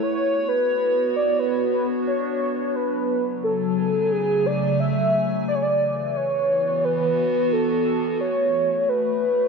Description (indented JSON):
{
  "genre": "IDM",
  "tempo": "88 BPM",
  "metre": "4/4",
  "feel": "straight",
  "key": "F# minor",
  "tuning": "A4 = 440 Hz",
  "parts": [
    { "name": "warm velvety synth lead", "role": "melody", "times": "0.0-9.5 s", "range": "G#4 to E5", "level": "-21 LUFS", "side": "equal", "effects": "chorus, tape echo" },
    { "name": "warbly tape-like pad", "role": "sustained chords", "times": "0.0-9.5 s", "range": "C#3 to G#5", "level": "-24 LUFS", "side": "right 1 dB", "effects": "chorus, built-in reverb, phaser, vintage 12-bit sampler grit" }
  ],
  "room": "moderate echo chamber reverb, RT60 1.8 s, digital ambience",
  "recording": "dark, warm production",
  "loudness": "-20 LUFS",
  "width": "side -4 dB against mid",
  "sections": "0.0-9.5 A section",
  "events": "none",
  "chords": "0.0 Bmadd9; 2.8 F#m11; 5.5 E; 8.2 Amaj7"
}